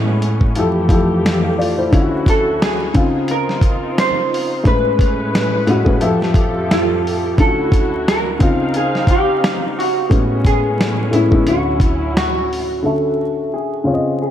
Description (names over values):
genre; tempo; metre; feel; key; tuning
lo-fi hip hop; 88 BPM; 4/4; swing 55% on 16ths; unclear; A4 = 441 Hz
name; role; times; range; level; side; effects
vintage hollow-body jazz guitar; melody; 0.0-14.3 s; E4 to B#4; -20 LUFS; right 1 dB; lush chorus, low-pass filter, ping-pong delay
dark upright piano; accompaniment; 0.0-14.3 s; A2 to F5; -18 LUFS; left 2 dB; cassette tape, low-pass filter
dark studio string section; sustained chords; 0.0-12.8 s; D2 to E#5; -22 LUFS; equal; low-pass filter
dusty soul sampler-style drum kit; drums; 0.2-12.7 s; finger snaps, hi-hat, kick drum, snare drum; -17 LUFS; equal; none
room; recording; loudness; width
moderate plate reverb, RT60 3.1 s; dreamy mix soaked in reverb, vinyl crackle; -14 LUFS; side -10 dB against mid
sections
0.0-12.8 A section; 12.8-14.3 B section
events
none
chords
0.0 Amaj9; 0.6 Fmaj9; 1.9 Dmaj9; 3.0 C#maj9; 4.7 Amaj9; 6.0 Fmaj9; 7.4 Dmaj9; 8.4 C#maj9; 10.1 Amaj9; 11.5 Dmaj9